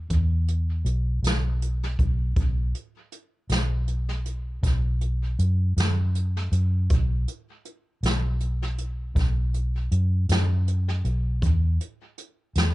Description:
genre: slow blues.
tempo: 53 BPM (dotted quarters).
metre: 12/8.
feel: straight.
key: unclear.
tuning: A4 = 438 Hz.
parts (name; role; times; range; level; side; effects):
vintage muted fingered electric bass; bass; 0.0-12.7 s; B1 to F#2; -23 LUFS; equal; none.
jazz brush drum kit; drums; 0.1-12.7 s; hi-hat, kick drum, snare drum; -27 LUFS; right 1 dB; tape echo.
room: little or no reverb.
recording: echo-heavy mix, nothing above 10.4 kHz.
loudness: -22 LUFS.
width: side -18 dB against mid.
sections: 0.0-12.7 A section.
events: none.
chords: none.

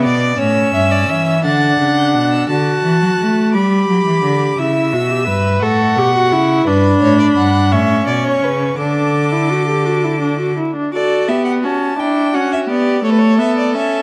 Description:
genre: classical, baroque-style fugue for string quartet.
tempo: 57 BPM (dotted quarters).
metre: 6/8.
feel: straight.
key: D major from 6.7 s.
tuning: A4 = 440 Hz.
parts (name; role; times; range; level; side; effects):
rich violin; melody; 0.0-14.0 s; B4 to A6; -24 LUFS; equal; none.
warm violin; second line; 0.0-14.0 s; E4 to B5; -22 LUFS; equal; none.
warm viola; accompaniment; 0.0-14.0 s; A3 to B4; -18 LUFS; equal; none.
rich cello; bass; 0.0-10.5 s; G2 to A3; -20 LUFS; equal; none.
room: moderate concert hall reverb, RT60 2.0 s.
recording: close, detailed microphones, vinyl crackle.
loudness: -15 LUFS.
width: mono.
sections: 0.0-2.5 A section; 2.5-10.9 B section; 10.9-14.0 C section.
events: none.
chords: 0.4 A7; 1.4 D; 3.5 Gmaj7; 4.6 C#dim; 5.6 F#m7/A; 6.7 G; 7.7 A; 8.8 D; 12.0 Em7; 13.0 A.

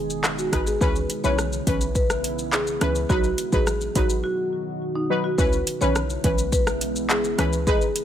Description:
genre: dancehall.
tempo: 105 BPM.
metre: 4/4.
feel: straight.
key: C# minor.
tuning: A4 = 440 Hz.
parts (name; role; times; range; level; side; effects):
marimba with medium mallets; melody; 0.0-7.8 s; D#4 to C#5; -26 LUFS; equal; ping-pong delay.
deep dark ambient pad; sustained chords; 0.0-8.0 s; B2 to G#4; -31 LUFS; right 1 dB; chorus, built-in reverb, sidechain pumping.
short 808-style bass; bass; 0.0-7.9 s; F#1 to C#2; -28 LUFS; equal; none.
afro-pop drum kit; drums; 0.1-8.0 s; handclaps, hi-hat, kick drum, rim click, shaker; -24 LUFS; equal; none.
synth brass stab; accompaniment; 0.5-7.9 s; E3 to B4; -26 LUFS; equal; chorus.
room: little or no reverb.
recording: none.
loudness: -20 LUFS.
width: side -10 dB against mid.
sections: 0.0-5.4 A section; 5.4-8.0 B section.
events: break 4.2-5.4.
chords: 0.0 G#m; 0.8 C#m7; 3.1 B; 5.4 C#m7.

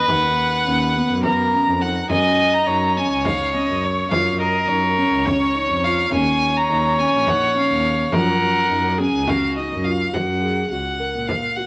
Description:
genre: contemporary instrumental, chamber music in an uneven meter.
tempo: 209 BPM (eighths).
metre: 7/8.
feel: straight.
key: F# major.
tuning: A4 = 441 Hz.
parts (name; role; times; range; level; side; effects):
warm violin; melody; 0.0-11.7 s; C#5 to A#5; -25 LUFS; equal; none.
warm viola; second line; 0.0-9.8 s; F#4 to D#5; -23 LUFS; equal; none.
warm double bass; bass; 0.0-11.4 s; A#1 to A#2; -27 LUFS; equal; none.
felt-muted upright piano; arpeggios; 0.1-11.7 s; E#3 to A#4; -27 LUFS; equal; none.
frame drum; percussion; 0.1-11.7 s; none; -30 LUFS; equal; none.
room: moderate plate reverb, RT60 3.2 s.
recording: none.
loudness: -19 LUFS.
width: mono.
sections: 0.0-10.1 A section; 10.1-11.7 B section.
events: none.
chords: 0.0 Bmaj7/D#; 2.1 F#maj7; 6.1 D#5; 8.1 F#maj7; 10.1 F#.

